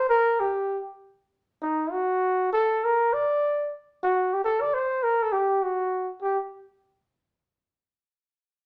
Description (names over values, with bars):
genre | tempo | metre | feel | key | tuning
jazz | free time | none | none | unclear | A4 = 439 Hz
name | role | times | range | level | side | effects
mellow flugelhorn | solo | 0.0-6.4 s | Eb4 to D5 | -25 LUFS | equal | none
room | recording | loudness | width
wet studio reverb, RT60 0.7 s | none | -25 LUFS | mono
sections
0.0-1.4 A section; 1.4-6.2 B section; 6.2-7.4 C section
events
none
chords
none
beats
free time